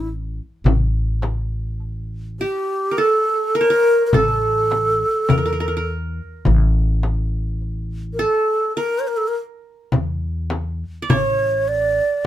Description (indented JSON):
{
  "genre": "Arabic maqam ensemble",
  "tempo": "103 BPM (eighths)",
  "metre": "10/8",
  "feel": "straight",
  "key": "A maqam hijaz",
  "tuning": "A4 = 435 Hz",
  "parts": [
    { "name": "breathy low ney", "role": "melody", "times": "0.0-12.3 s", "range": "G4 to D5", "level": "-18 LUFS", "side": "right 1 dB", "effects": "none" },
    { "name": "upright bass", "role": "bass", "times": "0.0-12.0 s", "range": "A1 to E2", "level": "-22 LUFS", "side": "equal", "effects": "none" },
    { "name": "darbuka", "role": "percussion", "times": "0.7-11.4 s", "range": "none", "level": "-23 LUFS", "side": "right 2 dB", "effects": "none" },
    { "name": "frame drum", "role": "percussion", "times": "0.7-11.4 s", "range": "none", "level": "-22 LUFS", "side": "left 5 dB", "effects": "none" },
    { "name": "qanun", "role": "second line", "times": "2.4-12.2 s", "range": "G4 to D5", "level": "-24 LUFS", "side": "right 1 dB", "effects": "none" }
  ],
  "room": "light reverb",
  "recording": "minimal, uncompressed stereo recording",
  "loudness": "-17 LUFS",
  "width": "side -12 dB against mid",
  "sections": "0.0-12.3 A section",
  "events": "none",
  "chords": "none",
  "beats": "0.07 | 0.65 1.23 1.81 2.39 2.97 3.55 4.13 4.71 5.29 5.87 | 6.45 7.03 7.61 8.19 8.77 9.35 9.93 10.51 11.09 11.67 | 12.25"
}